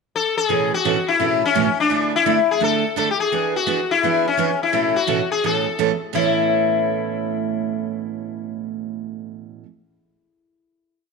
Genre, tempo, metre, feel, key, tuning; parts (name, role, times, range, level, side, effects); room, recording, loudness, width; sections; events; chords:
country; 170 BPM; 4/4; swing 65% on 8ths; A major; A4 = 442 Hz
sitar; melody; 0.2-9.1 s; C#4 to A4; -19 LUFS; left 6 dB
picked steel-string acoustic guitar; accompaniment; 0.5-9.7 s; A2 to A4; -23 LUFS; right 13 dB
moderate echo chamber reverb, RT60 1.3 s; 1960s-style stereo with parts hard left and right; -17 LUFS; side -4 dB against mid
0.0-0.5 pickup bar; 0.5-6.1 A section; 6.1-9.0 final chord
0.5 Aadd9; 1.9 Dsus2; 3.3 E7; 4.7 Aadd9